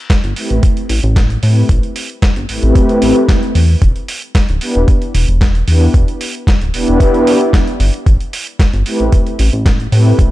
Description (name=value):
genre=nu-disco, nu disco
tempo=113 BPM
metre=4/4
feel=straight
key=A minor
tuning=A4 = 435 Hz
part: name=dusty soul sampler-style drum kit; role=drums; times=0.1-10.3 s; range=hi-hat, snare drum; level=-21 LUFS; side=equal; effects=none
part: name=electronic kick drum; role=drums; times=0.1-10.3 s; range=none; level=-12 LUFS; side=equal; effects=none
part: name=chorused synth bass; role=bass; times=0.2-10.3 s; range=D1 to A2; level=-12 LUFS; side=equal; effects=sidechain pumping
part: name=warm analog pad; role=accompaniment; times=0.4-10.1 s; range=A3 to D5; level=-15 LUFS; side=equal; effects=chorus, sidechain pumping, ping-pong delay
room=little or no reverb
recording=dark, warm production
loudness=-10 LUFS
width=side -16 dB against mid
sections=0.0-10.3 A section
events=filter sweep on analog synth pad 0.0-10.3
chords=0.0 Am9; 3.8 Em7; 8.1 Am9